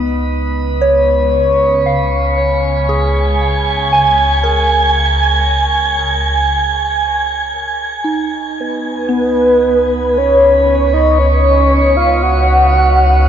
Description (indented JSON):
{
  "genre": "ambient",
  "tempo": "58 BPM",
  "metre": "3/4",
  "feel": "straight",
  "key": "Db mixolydian",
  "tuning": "A4 = 440 Hz",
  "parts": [
    { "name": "soft synth bell", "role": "arpeggios", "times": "0.0-13.3 s", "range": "Cb4 to Ab5", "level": "-17 LUFS", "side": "equal", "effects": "chorus, phaser, tape echo" },
    { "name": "deep rumbling drone", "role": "bass", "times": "0.0-13.3 s", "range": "Db2", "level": "-16 LUFS", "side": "equal", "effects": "built-in reverb, phaser" },
    { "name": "wind-like tuned noise texture", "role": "texture", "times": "2.6-8.1 s", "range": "Ab5", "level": "-17 LUFS", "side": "right 3 dB", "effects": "built-in reverb" },
    { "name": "warm velvety synth lead", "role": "melody", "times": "8.6-13.3 s", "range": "Cb5 to Gb5", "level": "-10 LUFS", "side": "equal", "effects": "chorus, tremolo, vintage 12-bit sampler grit, tape echo" }
  ],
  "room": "wet shimmer reverb, RT60 8.2 s",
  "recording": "nothing above 7.8 kHz",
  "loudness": "-11 LUFS",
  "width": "side -9 dB against mid",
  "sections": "0.0-8.1 A section; 8.1-13.3 B section",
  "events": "fade-in on synth drone 0.0-8.1; fade-out on synth bell 0.0-8.1",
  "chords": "0.0 Db5"
}